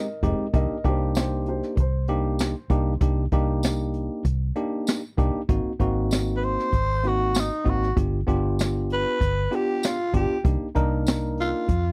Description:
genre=straight-eighth soul blues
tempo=97 BPM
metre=4/4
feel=straight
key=C minor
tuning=A4 = 440 Hz
part: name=growling tenor saxophone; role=melody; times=0.0-0.2, 6.4-11.9 s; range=Eb4 to C5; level=-28 LUFS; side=equal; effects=none
part: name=dark upright piano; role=second line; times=0.0-3.0 s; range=G4 to Eb5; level=-35 LUFS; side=equal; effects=none
part: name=tine electric piano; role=accompaniment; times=0.0-11.7 s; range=Ab3 to Bb4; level=-30 LUFS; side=equal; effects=none
part: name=vintage muted fingered electric bass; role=bass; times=0.2-11.9 s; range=F1 to F2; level=-28 LUFS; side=equal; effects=none
part: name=jazz brush drum kit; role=drums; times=0.2-11.8 s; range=hi-hat, kick drum, snare drum, tambourine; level=-28 LUFS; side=equal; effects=none
room=little or no reverb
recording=dry, close 1970s-style studio recording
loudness=-24 LUFS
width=mono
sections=0.0-11.9 A section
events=none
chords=0.0 Fm7; 0.5 Cm7; 5.5 Ab7; 8.0 G7; 10.4 Cm7

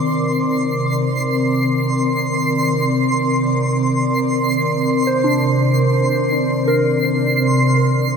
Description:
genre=ambient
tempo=free time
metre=none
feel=none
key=C minor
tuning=A4 = 440 Hz
part: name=glassy FM pad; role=sustained chords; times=0.0-8.2 s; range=C3 to D5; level=-17 LUFS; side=equal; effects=ensemble chorus, built-in reverb
part: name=soft synth bell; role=arpeggios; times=0.0-8.2 s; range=D4 to D6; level=-23 LUFS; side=left 1 dB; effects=chorus, phaser, ping-pong delay
part: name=twinkling granular texture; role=texture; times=0.0-8.2 s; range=C6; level=-22 LUFS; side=right 2 dB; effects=built-in reverb
room=wet huge ambient reverb, RT60 8.0 s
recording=dreamy mix soaked in reverb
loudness=-15 LUFS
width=side -6 dB against mid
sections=0.0-8.2 A section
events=none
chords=0.0 Cm7

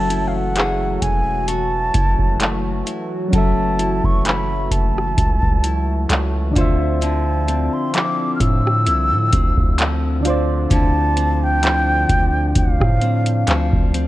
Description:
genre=contemporary R&B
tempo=65 BPM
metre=4/4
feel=swing 54% on 16ths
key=unclear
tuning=A4 = 439 Hz
part: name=breathy mellow concert flute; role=melody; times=0.0-13.9 s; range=F5 to F6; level=-22 LUFS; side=equal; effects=ping-pong delay
part: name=soft electric-piano-like synth keys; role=accompaniment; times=0.0-14.1 s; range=D3 to E5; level=-26 LUFS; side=equal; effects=chorus
part: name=hollow soft pad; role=sustained chords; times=0.0-14.1 s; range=D3 to F#4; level=-28 LUFS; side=equal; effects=chorus
part: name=nylon-string guitar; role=arpeggios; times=0.0-14.1 s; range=D3 to G#4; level=-26 LUFS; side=left 3 dB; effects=ping-pong delay
part: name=long sustained 808-style bass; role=bass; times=0.0-14.1 s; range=E1 to A2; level=-20 LUFS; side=equal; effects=none
part: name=booming analog drum machine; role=drums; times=0.1-14.1 s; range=handclaps, hi-hat, kick drum, rim click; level=-19 LUFS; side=equal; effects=none
room=little or no reverb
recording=worn, warbling old tape, cassette tape, warbly pitch drift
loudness=-16 LUFS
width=side -16 dB against mid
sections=0.0-14.1 A section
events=none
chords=0.0 F#m9; 6.6 Dm9

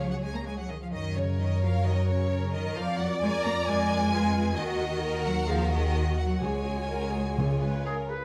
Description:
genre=quick classical-period movement for symphony orchestra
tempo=131 BPM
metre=4/4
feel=uneven beats, rubato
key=F# major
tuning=A4 = 440 Hz
part: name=rich studio violin section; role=melody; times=0.0-8.2 s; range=G#4 to A#5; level=-37 LUFS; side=equal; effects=none
part: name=rich chamber violin section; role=second line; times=0.0-8.1 s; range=E#4 to D5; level=-39 LUFS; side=equal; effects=none
part: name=rich studio viola section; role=accompaniment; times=0.0-8.2 s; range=E#4 to D5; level=-36 LUFS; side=equal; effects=none
part: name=rich chamber double bass section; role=bass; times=0.0-8.1 s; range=C#2 to F#2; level=-32 LUFS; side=equal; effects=none
part: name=warm chamber cello section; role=bass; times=0.0-7.8 s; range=C#3 to A#3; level=-34 LUFS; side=equal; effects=none
part: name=timpani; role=percussion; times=6.4-8.1 s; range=C#3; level=-34 LUFS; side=equal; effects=none
part: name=mellow hollow flute section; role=second line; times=7.9-8.2 s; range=G#5 to B5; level=-42 LUFS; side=equal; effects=none
part: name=warm oboe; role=second line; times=7.9-8.2 s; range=G#4 to B4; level=-38 LUFS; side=equal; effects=none
room=moderate recital hall reverb, RT60 1.4 s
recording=close, detailed microphones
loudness=-28 LUFS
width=mono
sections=0.0-8.2 A section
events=none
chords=0.0 C#; 0.9 F#; 2.8 A#7/E#; 4.6 D#m; 6.4 C#sus4; 7.4 C#

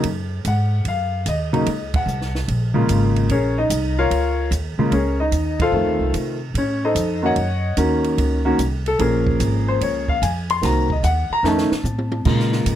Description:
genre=jazz piano trio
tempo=147 BPM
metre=4/4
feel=swing 67% on 8ths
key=Bb minor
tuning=A4 = 440 Hz
part: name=warm concert grand piano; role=melody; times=0.0-12.8 s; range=Db3 to C6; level=-20 LUFS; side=left 1 dB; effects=none
part: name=upright bass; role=bass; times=0.0-12.8 s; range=Ab1 to C3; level=-22 LUFS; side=equal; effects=none
part: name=compact cocktail drum kit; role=drums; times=0.0-12.8 s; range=crash cymbal, hi-hat, kick drum, ride cymbal, snare drum, toms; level=-28 LUFS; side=right 2 dB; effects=none
room=little or no reverb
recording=none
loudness=-17 LUFS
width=side -11 dB against mid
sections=0.0-12.3 A section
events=band accent 1.9, 5.5; drum fill 11.4-12.3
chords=0.0 Ebm7; 2.5 Bbm7; 5.7 F7; 7.4 Ebm7; 9.0 Bbm7; 10.6 Cm7b5; 11.4 F7b13; 12.3 Bbm7

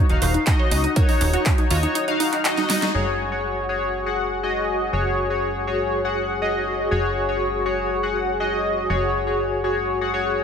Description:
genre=progressive house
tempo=121 BPM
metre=4/4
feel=straight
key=unclear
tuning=A4 = 440 Hz
part: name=wide unison pluck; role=arpeggios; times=0.0-2.9 s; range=Eb4 to Db5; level=-27 LUFS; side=right 3 dB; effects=cassette tape, sidechain pumping, dub echo
part: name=chorused polysynth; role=stabs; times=0.0-10.4 s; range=Eb4 to Gb5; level=-22 LUFS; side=left 3 dB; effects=sidechain pumping, dub echo
part: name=plucky analog bass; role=bass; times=0.1-10.4 s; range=Eb1 to Eb2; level=-28 LUFS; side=right 1 dB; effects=tube saturation, sidechain pumping
part: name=big-room dance drum kit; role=drums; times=0.1-3.0 s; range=crash cymbal, handclaps, hi-hat, snare drum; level=-26 LUFS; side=right 2 dB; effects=low-pass filter on hats, low-pass filter on snare, low-pass filter on cymbals, low-pass filter on room
part: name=electronic kick drum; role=drums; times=0.5-1.6 s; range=none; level=-19 LUFS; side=right 1 dB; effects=none
part: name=supersaw pad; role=sustained chords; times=3.3-10.4 s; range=Gb4 to Db5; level=-28 LUFS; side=right 2 dB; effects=sidechain pumping, low-pass filter
room=moderate recital hall reverb, RT60 1.4 s, digital ambience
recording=none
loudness=-19 LUFS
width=side -7 dB against mid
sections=0.0-2.9 A section; 2.9-10.4 B section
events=filter sweep on synth pluck 0.0-2.9; drum fill 2.6-2.9; band accent 2.8; filter sweep on supersaw synth 2.9-10.4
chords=0.0 Ebm7; 2.9 Gbsus2

